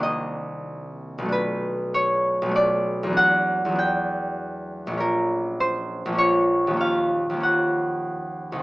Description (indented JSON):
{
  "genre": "classical, solo harp piece",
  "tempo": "98 BPM",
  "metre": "3/4",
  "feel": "uneven beats, rubato",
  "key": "unclear",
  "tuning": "A4 = 439 Hz",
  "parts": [
    { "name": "concert harp", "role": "solo", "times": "0.0-8.6 s", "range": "Bb1 to G5", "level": "-21 LUFS", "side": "equal", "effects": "none" }
  ],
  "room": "light reverb",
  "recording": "small speaker sound",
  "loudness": "-21 LUFS",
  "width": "side -20 dB against mid",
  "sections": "0.0-8.6 A section",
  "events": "none",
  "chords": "0.0 Cm9; 1.3 Bm7; 3.2 Em9; 5.0 Bbm; 6.8 Ebm9",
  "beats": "0.03 0.67 | 1.31 1.94 2.55 | 3.16 3.79 4.40 | 5.01 5.60 6.19 | 6.80 7.42 8.03"
}